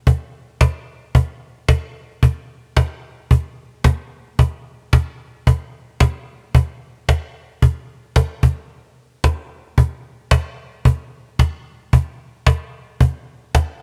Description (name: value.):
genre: pop.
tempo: 111 BPM.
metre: 4/4.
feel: swing 60% on 16ths.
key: none.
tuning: none.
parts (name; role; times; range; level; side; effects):
cajon; drums; 0.1-13.7 s; none; -16 LUFS; equal; none.
room: little or no reverb.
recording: close, detailed microphones.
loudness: -20 LUFS.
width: mono.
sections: 0.1-13.8 A section.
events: none.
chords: none.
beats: | 0.07 0.61 1.15 1.69 | 2.23 2.77 3.31 3.85 | 4.39 4.92 5.46 6.00 | 6.54 7.08 7.62 8.16 | 8.70 9.24 9.77 10.31 | 10.85 11.39 11.93 12.47 | 13.01 13.54.